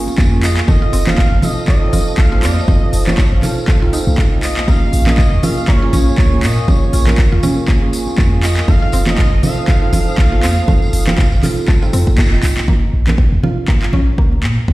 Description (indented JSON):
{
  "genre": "afro house",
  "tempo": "120 BPM",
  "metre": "4/4",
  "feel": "swing 56% on 16ths",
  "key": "Bb minor",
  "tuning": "A4 = 438 Hz",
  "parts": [
    { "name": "dark analog pad", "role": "sustained chords", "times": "0.0-12.6 s", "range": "Bb4 to F6", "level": "-29 LUFS", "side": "left 1 dB", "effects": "chorus, sidechain pumping" },
    { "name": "mellow tine electric piano", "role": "stabs", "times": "0.0-12.7 s", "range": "Bb3 to Eb5", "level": "-23 LUFS", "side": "right 3 dB", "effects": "sidechain pumping, dub echo" },
    { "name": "congas", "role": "percussion", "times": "0.1-14.7 s", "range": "none", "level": "-22 LUFS", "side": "right 1 dB", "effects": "none" },
    { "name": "tambourine", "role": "percussion", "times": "0.1-12.7 s", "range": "none", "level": "-32 LUFS", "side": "right 2 dB", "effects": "none" },
    { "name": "warm 808-style bass", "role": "bass", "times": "0.2-14.7 s", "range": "Eb1 to Bb2", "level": "-16 LUFS", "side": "equal", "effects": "sidechain pumping" },
    { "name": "afro-pop drum kit", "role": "drums", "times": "0.2-14.5 s", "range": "handclaps, hi-hat, toms", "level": "-22 LUFS", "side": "left 1 dB", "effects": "none" },
    { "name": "electronic kick drum", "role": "drums", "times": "0.2-14.7 s", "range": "none", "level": "-14 LUFS", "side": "equal", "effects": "none" },
    { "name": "expressive portamento lead", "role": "melody", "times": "0.4-12.1 s", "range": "Db5 to F5", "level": "-25 LUFS", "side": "right 2 dB", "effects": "wide subtle chorus, dub echo" },
    { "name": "mallet-like synth pluck", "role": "arpeggios", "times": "0.4-14.3 s", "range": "A3 to F4", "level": "-25 LUFS", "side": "equal", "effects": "chorus, sidechain pumping, dub echo" }
  ],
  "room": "digital ambience",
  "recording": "played on a big sound system in a bare room, stone room reverb",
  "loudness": "-11 LUFS",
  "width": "side -18 dB against mid",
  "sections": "0.0-12.7 A section; 12.7-14.7 B section",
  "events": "drop 0.0-12.7; band accent 12.2",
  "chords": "0.0 Bbm7; 0.7 F7; 4.7 Bbm7; 8.7 F7; 12.7 Bbm"
}